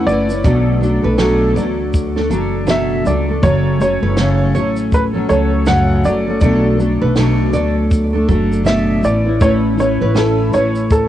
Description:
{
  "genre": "acoustic pop",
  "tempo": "80 BPM",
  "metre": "4/4",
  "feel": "swing 60% on 16ths",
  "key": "unclear",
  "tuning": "A4 = 440 Hz",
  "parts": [
    { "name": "warm upright piano", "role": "melody", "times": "0.0-11.1 s", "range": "A4 to F#5", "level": "-19 LUFS", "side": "right 1 dB", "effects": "cassette tape" },
    { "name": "fingerpicked steel-string acoustic guitar", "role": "accompaniment", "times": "0.0-11.1 s", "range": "F#2 to B4", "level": "-15 LUFS", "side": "equal", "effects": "double-tracked left and right, cassette tape" },
    { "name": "upright bass", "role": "bass", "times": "0.0-11.1 s", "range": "F#1 to D2", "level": "-19 LUFS", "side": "equal", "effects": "none" },
    { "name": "compact cocktail drum kit", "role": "drums", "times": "0.1-11.1 s", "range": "kick drum, shaker, snare drum", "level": "-18 LUFS", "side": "equal", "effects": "cassette tape" },
    { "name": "nylon-string guitar", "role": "arpeggios", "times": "0.5-10.7 s", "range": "A4 to D5", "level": "-26 LUFS", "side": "right 3 dB", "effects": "cassette tape, tape echo" }
  ],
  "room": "small room ambience",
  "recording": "home recording on cassette",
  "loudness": "-12 LUFS",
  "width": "side -12 dB against mid",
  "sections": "0.0-11.1 A section",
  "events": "none",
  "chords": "0.4 Bm7; 3.4 F#m; 6.4 Bm7; 9.0 Aadd9"
}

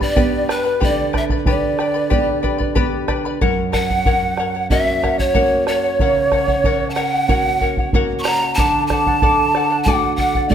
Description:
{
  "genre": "andean folk, Andean ensemble",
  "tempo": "93 BPM",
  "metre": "4/4",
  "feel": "straight",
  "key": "unclear",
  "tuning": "A4 = 439 Hz",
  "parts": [
    { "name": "breathy polished pan flute", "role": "melody", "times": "0.0-10.5 s", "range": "B4 to C#6", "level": "-20 LUFS", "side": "right 1 dB", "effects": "none" },
    { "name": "mellow large quena", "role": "second line", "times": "0.0-10.5 s", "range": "B4 to C#6", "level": "-24 LUFS", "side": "right 2 dB", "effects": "none" },
    { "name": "charango", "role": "accompaniment", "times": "0.0-10.5 s", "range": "G4 to B5", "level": "-22 LUFS", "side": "left 8 dB", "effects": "none" },
    { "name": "nylon-string guitar", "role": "accompaniment", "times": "0.0-10.5 s", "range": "F#2 to G4", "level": "-23 LUFS", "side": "right 6 dB", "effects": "none" },
    { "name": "bombo", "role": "percussion", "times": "0.0-10.5 s", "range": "none", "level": "-21 LUFS", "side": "equal", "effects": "none" }
  ],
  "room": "moderate recital hall reverb, RT60 1.4 s",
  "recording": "none",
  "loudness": "-15 LUFS",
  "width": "side -9 dB against mid",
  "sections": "0.0-10.5 A section",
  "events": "none",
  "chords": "0.0 G; 3.4 F#; 8.6 D"
}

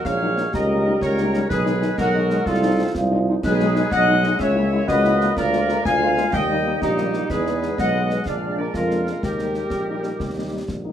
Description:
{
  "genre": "military-style march for wind band",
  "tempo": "124 BPM (dotted quarters)",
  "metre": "6/8",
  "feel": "straight",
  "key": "unclear",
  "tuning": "A4 = 438 Hz",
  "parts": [
    { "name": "warm trumpet section", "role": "melody", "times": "0.0-10.6 s", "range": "D#4 to E#5", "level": "-32 LUFS", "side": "equal", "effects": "none" },
    { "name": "warm euphonium", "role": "second line", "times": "0.0-10.9 s", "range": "B3 to Ab4", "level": "-27 LUFS", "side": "right 3 dB", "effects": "none" },
    { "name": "dark trombone section", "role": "sustained chords", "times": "0.0-10.9 s", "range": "F3 to Eb4", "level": "-30 LUFS", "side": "right 1 dB", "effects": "none" },
    { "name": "warm tuba", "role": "bass", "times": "0.0-10.9 s", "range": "Bb1 to E#2", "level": "-23 LUFS", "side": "right 1 dB", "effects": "none" },
    { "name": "clear woodwind section", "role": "second line", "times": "0.1-10.6 s", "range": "G4 to G#5", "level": "-24 LUFS", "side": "left 3 dB", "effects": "none" },
    { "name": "flute section", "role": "second line", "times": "0.1-10.6 s", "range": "D#4 to E#5", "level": "-28 LUFS", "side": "right 2 dB", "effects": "none" },
    { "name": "concert snare drum, concert bass drum and clash cymbals", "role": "drums", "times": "0.1-10.8 s", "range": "none", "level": "-30 LUFS", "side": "left 1 dB", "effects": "none" },
    { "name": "warm French horn section", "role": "accompaniment", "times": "0.2-10.9 s", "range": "Eb3 to E#4", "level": "-28 LUFS", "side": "left 5 dB", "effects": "none" }
  ],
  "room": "moderate studio reverb, RT60 0.7 s",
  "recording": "none",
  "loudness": "-18 LUFS",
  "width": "side -10 dB against mid",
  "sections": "0.0-10.9 A section",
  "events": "none",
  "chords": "0.0 Ebm; 0.5 Eb7/Db; 1.5 Abm/Cb; 2.5 F7/C; 3.4 G#m/B; 4.4 A#m7b5/C#; 5.4 A#7/D; 6.3 D#; 7.3 E; 8.3 A#7; 9.2 D#"
}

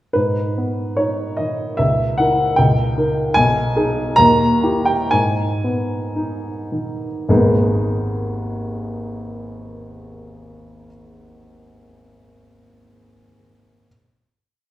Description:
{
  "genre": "classical, romantic character piece for solo piano",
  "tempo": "51-78 BPM",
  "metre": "2/4",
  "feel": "rubato",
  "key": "G# minor",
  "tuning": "A4 = 440 Hz",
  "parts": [
    { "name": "warm baby grand piano", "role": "solo", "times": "0.1-13.9 s", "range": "G#1 to A#5", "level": "-16 LUFS", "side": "equal", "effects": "none" }
  ],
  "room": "wet recital hall reverb, RT60 1.7 s",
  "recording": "heard from further back in the room",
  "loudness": "-16 LUFS",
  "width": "side -14 dB against mid",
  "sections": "0.2-7.3 A section; 7.3-11.7 final chord",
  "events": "slowing down 2.6-7.3",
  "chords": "0.2 G#m; 1.8 A#dim/C#; 2.6 D#7/C#; 3.4 G#m/B; 4.2 D#; 5.1 G#m"
}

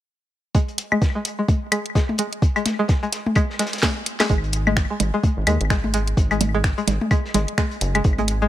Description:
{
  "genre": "minimal techno",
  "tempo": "128 BPM",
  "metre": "4/4",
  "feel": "swing 59% on 16ths",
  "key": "unclear",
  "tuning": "A4 = 441 Hz",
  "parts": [
    { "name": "string-like resonator pluck", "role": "riff", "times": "0.5-8.4 s", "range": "G#3", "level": "-25 LUFS", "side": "equal", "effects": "chorus, sidechain pumping, dub echo" },
    { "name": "cloth-damped thuddy drum kit", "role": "drums", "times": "0.5-8.4 s", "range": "hi-hat, snare drum", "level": "-35 LUFS", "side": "left 2 dB", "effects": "high-pass filter on hats, high-pass filter on snare, high-pass filter on room" },
    { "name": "electronic kick drum", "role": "drums", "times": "0.5-8.2 s", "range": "none", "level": "-19 LUFS", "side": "equal", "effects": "none" },
    { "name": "garage drum kit", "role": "drums", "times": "0.8-8.4 s", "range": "finger snaps, hi-hat, snare drum", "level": "-24 LUFS", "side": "equal", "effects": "none" },
    { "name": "electronic toms, woodblock and congas", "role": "percussion", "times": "0.9-8.3 s", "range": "none", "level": "-25 LUFS", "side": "left 1 dB", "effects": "ping-pong delay" },
    { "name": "rubbery square bass", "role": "bass", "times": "4.3-8.5 s", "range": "F#1 to D#2", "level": "-23 LUFS", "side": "equal", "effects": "sidechain pumping" },
    { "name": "granular cloud pad", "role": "texture", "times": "6.1-8.5 s", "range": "G#4 to G#5", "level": "-40 LUFS", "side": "right 1 dB", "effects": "none" }
  ],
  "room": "digital ambience",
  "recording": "none",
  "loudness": "-18 LUFS",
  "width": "side -13 dB against mid",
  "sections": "0.5-4.3 A section; 4.3-8.5 B section",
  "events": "filter sweep on synth pluck 0.5-4.3; drum fill 3.8-4.3",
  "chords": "0.5 N.C.; 4.3 G#5"
}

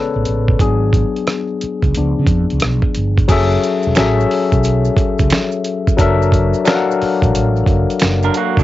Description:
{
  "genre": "R&B, neo-soul",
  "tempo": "89 BPM",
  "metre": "4/4",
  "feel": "swing 64% on 16ths",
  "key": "F# minor",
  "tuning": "A4 = 441 Hz",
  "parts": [
    { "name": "barky tine electric piano", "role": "accompaniment", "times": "0.0-8.6 s", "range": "C#3 to F#5", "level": "-17 LUFS", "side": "left 5 dB", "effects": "overdrive, cassette tape, plate reverb" },
    { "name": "mellow fretless electric bass", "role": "bass", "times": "0.2-8.6 s", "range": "E1 to C#3", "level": "-16 LUFS", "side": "right 1 dB", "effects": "none" },
    { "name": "dusty soul sampler-style drum kit", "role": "drums", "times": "0.3-8.6 s", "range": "crash cymbal, hi-hat, kick drum, rim click, snare drum", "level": "-16 LUFS", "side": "right 1 dB", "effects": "cassette tape" },
    { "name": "maracas and finger snaps", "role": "percussion", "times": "3.3-8.6 s", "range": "none", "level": "-32 LUFS", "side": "right 12 dB", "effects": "none" },
    { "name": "electric guitar through a small old amp", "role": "second line", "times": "8.2-8.6 s", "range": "F#3 to A#4", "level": "-17 LUFS", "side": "right 8 dB", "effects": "cassette tape" }
  ],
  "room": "light reverb",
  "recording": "home recording on cassette, nothing above 7.8 kHz",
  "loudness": "-13 LUFS",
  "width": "side -15 dB against mid",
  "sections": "0.0-3.3 A section; 3.3-8.6 B section",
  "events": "tine electric piano solo 0.0-3.3",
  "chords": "0.0 Amaj7; 0.6 G#m7b5; 1.9 C#7b9; 3.3 F#m9; 6.0 F#7alt"
}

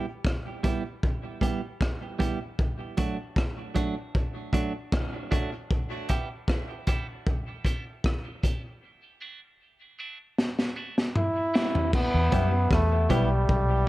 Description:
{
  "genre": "dub reggae",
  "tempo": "77 BPM",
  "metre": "4/4",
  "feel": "straight",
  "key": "E minor",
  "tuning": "A4 = 439 Hz",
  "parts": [
    { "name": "clean electric guitar", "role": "accompaniment", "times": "0.0-13.3 s", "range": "F#3 to G4", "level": "-33 LUFS", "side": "right 4 dB", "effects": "warbly pitch drift, high-pass filter, dub echo" },
    { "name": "crunchy breakbeat drum kit", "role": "drums", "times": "0.2-13.7 s", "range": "crash cymbal, hi-hat, kick drum, rim click, snare drum, toms", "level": "-27 LUFS", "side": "equal", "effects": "none" },
    { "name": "bright trombone", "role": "melody", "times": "11.2-13.9 s", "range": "G3 to E4", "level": "-26 LUFS", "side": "equal", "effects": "dub echo" },
    { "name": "vintage muted fingered electric bass", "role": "bass", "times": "12.1-13.8 s", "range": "B1 to F#2", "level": "-24 LUFS", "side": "equal", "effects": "none" },
    { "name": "clear upright piano", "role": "stabs", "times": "12.3-13.3 s", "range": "E4 to E5", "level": "-33 LUFS", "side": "left 5 dB", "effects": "dub echo" }
  ],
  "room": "light reverb",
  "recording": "echo-heavy mix",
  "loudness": "-25 LUFS",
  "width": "side -17 dB against mid",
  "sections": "0.0-11.9 A section; 11.9-13.9 B section",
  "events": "filter sweep on clean electric guitar 2.6-11.9; drum fill 10.4-11.9",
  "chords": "0.0 Em; 2.6 D; 5.7 Em; 8.8 D; 11.9 Em"
}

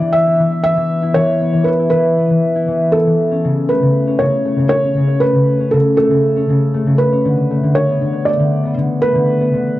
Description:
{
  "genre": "folktronica",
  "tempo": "118 BPM",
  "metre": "4/4",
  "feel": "straight",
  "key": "unclear",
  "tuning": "A4 = 440 Hz",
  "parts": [
    { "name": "felt-muted upright piano", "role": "melody", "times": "0.0-9.8 s", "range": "A4 to E5", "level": "-16 LUFS", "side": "right 1 dB", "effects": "tape echo" },
    { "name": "concert harp", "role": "arpeggios", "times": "0.0-9.8 s", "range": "C#3 to E4", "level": "-14 LUFS", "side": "left 1 dB", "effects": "none" }
  ],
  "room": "light reverb",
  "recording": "dry, close 1970s-style studio recording",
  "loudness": "-12 LUFS",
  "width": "side -15 dB against mid",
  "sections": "0.0-9.8 A section",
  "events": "none",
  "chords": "0.0 E5; 3.2 Aadd9/C#; 7.3 Gadd9 (rootless)"
}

